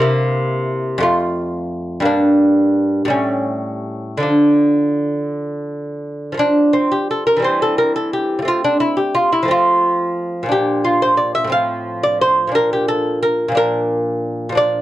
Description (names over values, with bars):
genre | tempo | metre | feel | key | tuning
classical, baroque-style dance for lute | 59 BPM (dotted quarters) | 6/8 | rubato | D minor, F major from 6.4 s | A4 = 440 Hz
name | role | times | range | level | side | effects
lute | solo | 0.0-14.8 s | F2 to F5 | -15 LUFS | equal | none
room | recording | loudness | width
little or no reverb | dry, close 1970s-style studio recording | -14 LUFS | side -14 dB against mid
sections
0.0-6.4 A section; 6.4-14.8 A section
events
none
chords
0.0 C7; 1.1 F; 2.1 Gm; 3.1 A7; 4.2 Dm; 6.4 F; 7.5 C/E; 8.5 F; 10.5 Bb; 11.5 F/A; 12.6 Bb